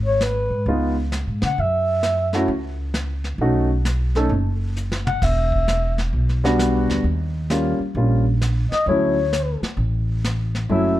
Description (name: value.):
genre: jazz, small-group swing and bop.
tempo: 132 BPM.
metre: 4/4.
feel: swing 66% on 8ths.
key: D major.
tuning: A4 = 440 Hz.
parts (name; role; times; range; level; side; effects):
upright bass; bass; 0.0-11.0 s; E1 to C#3; -22 LUFS; equal; none.
breathy clarinet; melody; 0.1-11.0 s; B4 to F#5; -21 LUFS; left 1 dB; none.
vintage brush drum kit; drums; 0.2-11.0 s; brushed snare drum, crash cymbal, hi-hat, kick drum, snare drum, toms; -28 LUFS; equal; none.
warm grand piano; accompaniment; 0.7-11.0 s; F#3 to A4; -21 LUFS; equal; none.
room: light reverb.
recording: dark, warm production.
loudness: -18 LUFS.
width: side -14 dB against mid.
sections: 0.0-11.0 A section.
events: drum fill 4.8-5.2.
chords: 0.0 G#madd11; 0.7 C#7; 1.6 F#7(no3); 3.4 B7; 5.2 Em7; 7.0 Eb9; 8.9 Dmaj9.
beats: 0.20 0.66 1.12 | 1.57 2.03 2.49 2.94 | 3.40 3.85 4.31 4.77 | 5.22 5.68 6.13 6.59 | 7.04 7.50 7.96 8.41 | 8.87 9.32 9.78 10.23 | 10.69.